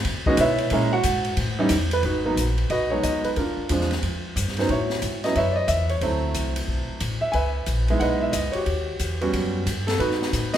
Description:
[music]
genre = jazz piano trio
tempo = 181 BPM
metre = 4/4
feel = swing 64% on 8ths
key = G# minor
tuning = A4 = 440 Hz
[part]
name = upright bass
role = bass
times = 0.0-10.6 s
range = G#1 to C#3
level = -26 LUFS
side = equal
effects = none
[part]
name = open jazz drum kit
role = drums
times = 0.0-10.6 s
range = hi-hat, kick drum, ride cymbal, snare drum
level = -30 LUFS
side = left 1 dB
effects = none
[part]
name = warm concert grand piano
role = melody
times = 0.3-10.6 s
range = E3 to G#5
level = -23 LUFS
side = right 1 dB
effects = none
[sound]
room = moderate scoring stage reverb, RT60 1.6 s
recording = recorded in a church or concert hall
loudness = -21 LUFS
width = side -10 dB against mid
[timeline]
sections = 0.0-2.0 A section; 2.0-10.6 B section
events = grand piano solo 0.0-2.0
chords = 0.0 E5; 0.7 A#m7b5; 1.4 A5; 2.0 G#m9; 3.4 A#add9; 4.7 A69; 6.0 D9; 7.3 C#m9; 8.7 D#7alt; 10.0 G#m7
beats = 0.06 0.39 | 0.72 1.05 1.38 1.71 | 2.04 2.38 2.71 3.04 | 3.37 3.70 4.03 4.36 | 4.70 5.03 5.36 5.69 | 6.02 6.35 6.68 7.02 | 7.35 7.68 8.01 8.34 | 8.67 9.00 9.33 9.66 | 10.00 10.33

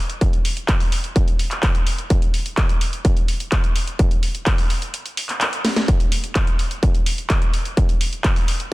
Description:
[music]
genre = techno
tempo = 127 BPM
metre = 4/4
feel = straight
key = none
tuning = none
[part]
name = techno drum kit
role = drums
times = 0.1-8.7 s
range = handclaps, hi-hat, snare drum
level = -24 LUFS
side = equal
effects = none
[part]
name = electronic kick drum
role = drums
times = 0.2-8.3 s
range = none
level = -18 LUFS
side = equal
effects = distortion
[sound]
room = little or no reverb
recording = dense, heavily limited modern master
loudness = -17 LUFS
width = side -20 dB against mid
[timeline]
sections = 0.0-8.7 A section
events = kick drops out 4.9-5.9; drum fill 5.6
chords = none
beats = | 0.21 0.69 1.16 1.63 | 2.10 2.58 3.05 3.52 | 3.99 4.46 4.94 5.41 | 5.88 6.35 6.83 7.30 | 7.77 8.24

